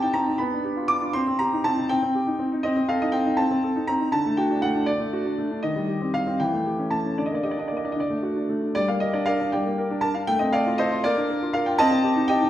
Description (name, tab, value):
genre	classical-period piano sonatina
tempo	80 BPM (dotted quarters)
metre	6/8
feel	straight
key	G minor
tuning	A4 = 441 Hz
part	clear concert grand piano	solo	0.0-12.5 s	D3 to D6	-21 LUFS	equal	none
room	wet recital hall reverb, RT60 1.4 s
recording	heard from further back in the room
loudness	-21 LUFS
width	side -12 dB against mid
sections	0.0-8.7 A section; 8.7-12.5 B section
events	none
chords	0.4 G7/B; 1.1 Cm; 2.6 Adim/C; 4.1 D; 5.6 Cm/Eb; 6.4 A7/E; 7.2 Gm/D; 8.0 D; 8.7 Gm; 10.3 F/A; 11.0 Bb; 11.8 Cm